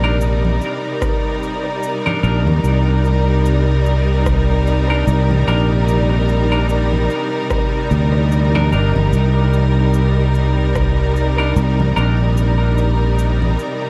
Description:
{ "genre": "ambient dub", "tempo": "74 BPM", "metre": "4/4", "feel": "swing 58% on 16ths", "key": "C minor", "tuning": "A4 = 440 Hz", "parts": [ { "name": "clear studio string section", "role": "sustained chords", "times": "0.0-13.9 s", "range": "C3 to D5", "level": "-22 LUFS", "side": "equal", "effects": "none" }, { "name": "semi-hollow electric guitar", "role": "stabs", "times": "0.0-12.2 s", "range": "D4 to Bb4", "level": "-29 LUFS", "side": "equal", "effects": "vintage 12-bit sampler grit, dub echo" }, { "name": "fingered electric bass", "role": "bass", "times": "0.0-13.6 s", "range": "G1 to Eb2", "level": "-17 LUFS", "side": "equal", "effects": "none" }, { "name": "electronic cabasa, congas and rim click", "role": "drums", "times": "0.2-13.8 s", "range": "none", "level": "-30 LUFS", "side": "equal", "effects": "none" }, { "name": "electronic kick drum", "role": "drums", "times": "1.0-10.9 s", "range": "none", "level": "-25 LUFS", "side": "equal", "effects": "studio reverb" } ], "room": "moderate cathedral reverb, RT60 4.5 s", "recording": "dreamy mix soaked in reverb, vinyl crackle", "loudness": "-16 LUFS", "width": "mono", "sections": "0.0-13.9 A section", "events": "kick drops out 12.4-13.9", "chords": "0.0 Cm9" }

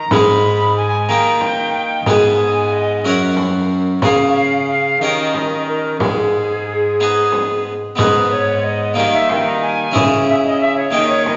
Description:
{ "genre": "classical, renaissance-style consort dance", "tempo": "61 BPM (dotted quarters)", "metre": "6/8", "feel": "straight", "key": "G# harmonic minor", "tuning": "A4 = 440 Hz", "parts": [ { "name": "mellow alto recorder", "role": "melody", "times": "0.0-11.4 s", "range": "G#4 to B5", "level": "-21 LUFS", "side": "equal", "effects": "none" }, { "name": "harpsichord", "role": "accompaniment", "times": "0.0-11.4 s", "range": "F#2 to C#5", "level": "-19 LUFS", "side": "equal", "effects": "none" }, { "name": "dark cello", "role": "bass", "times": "0.0-11.4 s", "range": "F#2 to D#3", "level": "-24 LUFS", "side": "equal", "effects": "none" }, { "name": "frame drum", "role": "percussion", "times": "0.1-11.4 s", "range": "none", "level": "-24 LUFS", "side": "equal", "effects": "none" } ], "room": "wet recital hall reverb, RT60 1.5 s", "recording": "nothing above 7.7 kHz", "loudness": "-16 LUFS", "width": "mono", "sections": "0.0-8.0 A section; 8.0-11.4 A section", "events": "none", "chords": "0.1 G#m; 1.1 D#; 2.1 G#m; 3.0 F#; 4.0 C#; 5.0 D#7; 6.0 G#m; 9.0 D#; 10.0 C#m" }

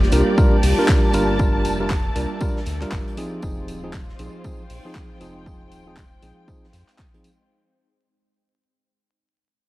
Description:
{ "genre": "deep house", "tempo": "118 BPM", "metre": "4/4", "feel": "swing 60% on 16ths", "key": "unclear", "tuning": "A4 = 440 Hz", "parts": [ { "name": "soft string machine", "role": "sustained chords", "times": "0.0-7.5 s", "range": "G3 to G5", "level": "-30 LUFS", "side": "equal", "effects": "ensemble chorus, sidechain pumping" }, { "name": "round analog bass", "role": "bass", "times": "0.0-6.8 s", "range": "Eb1 to F2", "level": "-24 LUFS", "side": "equal", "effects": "sidechain pumping" }, { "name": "oversized low-tuned drum kit", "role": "drums", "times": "0.0-7.4 s", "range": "hi-hat, snare drum, tambourine", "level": "-37 LUFS", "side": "right 2 dB", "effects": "sidechain pumping on hats, high-pass filter on hats, high-pass filter on snare, sidechain pumping on perc, high-pass filter on perc, high-pass filter on room" }, { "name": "warm studio string section", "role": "texture", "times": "0.0-7.5 s", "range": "C4 to A5", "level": "-28 LUFS", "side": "equal", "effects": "sidechain pumping" }, { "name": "tine electric piano", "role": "stabs", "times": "0.1-7.3 s", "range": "F3 to Bb4", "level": "-24 LUFS", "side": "right 1 dB", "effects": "vintage 12-bit sampler grit, sidechain pumping, tape echo" }, { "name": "deep house drum kit", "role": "drums", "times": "0.1-7.4 s", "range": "handclaps, hi-hat", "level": "-30 LUFS", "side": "left 1 dB", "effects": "none" }, { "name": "electronic kick drum", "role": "drums", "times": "0.4-7.1 s", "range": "none", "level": "-20 LUFS", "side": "equal", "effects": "none" } ], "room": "small room ambience", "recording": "vinyl crackle", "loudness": "-17 LUFS", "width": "side -17 dB against mid", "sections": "0.0-7.5 A section", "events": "fade-out 0.0-7.5", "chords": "0.0 Gm7; 3.2 Fm7" }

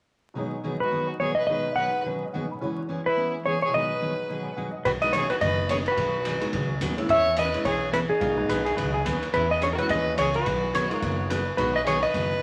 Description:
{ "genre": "country, western swing", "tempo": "214 BPM", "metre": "4/4", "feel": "swing 59% on 8ths", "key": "B major", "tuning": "A4 = 440 Hz", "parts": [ { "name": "honky-tonk upright piano", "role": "accompaniment", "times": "0.3-11.7 s", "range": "E2 to B5", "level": "-37 LUFS", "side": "equal", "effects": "none" }, { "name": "picked steel-string acoustic guitar", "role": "accompaniment", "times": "0.4-12.3 s", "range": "B2 to G#4", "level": "-35 LUFS", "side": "equal", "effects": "none" }, { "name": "clean lap steel guitar", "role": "melody", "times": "0.8-12.4 s", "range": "G#4 to F#5", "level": "-27 LUFS", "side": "equal", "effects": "none" }, { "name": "clear fiddle", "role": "second line", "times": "0.8-12.4 s", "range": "D#4 to C#5", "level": "-34 LUFS", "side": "equal", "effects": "none" }, { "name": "upright bass", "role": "bass", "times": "4.9-12.4 s", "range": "F#1 to E2", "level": "-34 LUFS", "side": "equal", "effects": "none" }, { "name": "swinging big-band drum kit", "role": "drums", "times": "4.9-12.2 s", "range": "hi-hat, kick drum, ride cymbal", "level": "-35 LUFS", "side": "equal", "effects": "none" }, { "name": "pedal steel guitar", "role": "second line", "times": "8.5-11.5 s", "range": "G#4 to C#5", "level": "-32 LUFS", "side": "equal", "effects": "none" } ], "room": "wet studio reverb, RT60 0.9 s", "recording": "vinyl crackle", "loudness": "-25 LUFS", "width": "mono", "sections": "0.4-4.8 A section; 4.8-12.4 B section", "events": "none", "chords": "0.4 B6; 2.6 E6; 3.7 B6; 7.1 E6; 8.2 B6; 9.3 E6; 10.5 B6" }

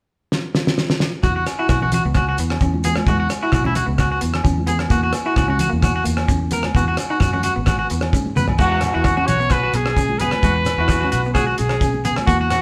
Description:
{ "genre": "highlife guitar band", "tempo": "130 BPM", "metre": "4/4", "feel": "straight", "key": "E major", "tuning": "A4 = 439 Hz", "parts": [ { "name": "cloth-damped thuddy drum kit", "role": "drums", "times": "0.3-12.6 s", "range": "crash cymbal, hi-hat, kick drum, rim click, snare drum, toms", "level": "-23 LUFS", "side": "equal", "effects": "none" }, { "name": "clean electric guitar", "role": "accompaniment", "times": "1.2-12.5 s", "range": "F#3 to E4", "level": "-29 LUFS", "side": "equal", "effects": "spring reverb" }, { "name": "electric guitar at the edge of break-up", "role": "arpeggios", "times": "1.2-12.5 s", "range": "E4 to B4", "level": "-25 LUFS", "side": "equal", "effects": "none" }, { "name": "fingered electric bass", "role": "bass", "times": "1.2-12.6 s", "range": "G#1 to G#2", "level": "-25 LUFS", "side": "equal", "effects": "none" }, { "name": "shekere", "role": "percussion", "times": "1.2-12.6 s", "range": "none", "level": "-33 LUFS", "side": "equal", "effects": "none" }, { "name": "agogo bells", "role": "percussion", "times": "1.5-12.6 s", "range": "none", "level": "-33 LUFS", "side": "equal", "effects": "none" }, { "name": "congas", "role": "percussion", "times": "1.8-12.3 s", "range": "none", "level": "-30 LUFS", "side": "equal", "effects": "none" }, { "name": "warm trumpet", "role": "melody", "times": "8.6-12.6 s", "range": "F#4 to C#5", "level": "-23 LUFS", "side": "equal", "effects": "none" } ], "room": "moderate stone room reverb, RT60 0.9 s", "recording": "band playing live in one room", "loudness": "-19 LUFS", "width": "mono", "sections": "0.0-1.2 A section; 1.2-8.6 B section; 8.6-12.6 C section", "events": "drum fill 0.3-1.2, 8.4", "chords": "0.0 N.C.; 1.2 Esus2; 4.9 F#7; 6.8 B5; 8.6 Eadd9" }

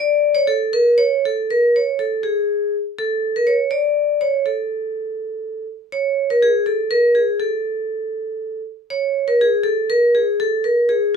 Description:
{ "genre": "persian", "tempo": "81 BPM (dotted quarters)", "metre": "6/8", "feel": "straight", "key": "A dastgah chahargah", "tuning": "A4 = 440 Hz", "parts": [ { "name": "vibraphone with hard mallets", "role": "solo", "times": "0.0-11.1 s", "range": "G#4 to D5", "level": "-16 LUFS", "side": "equal", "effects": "none" } ], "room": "light reverb", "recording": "close, detailed microphones", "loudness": "-16 LUFS", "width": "side -6 dB against mid", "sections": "0.0-8.9 A section; 8.9-11.2 A section", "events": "none", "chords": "none" }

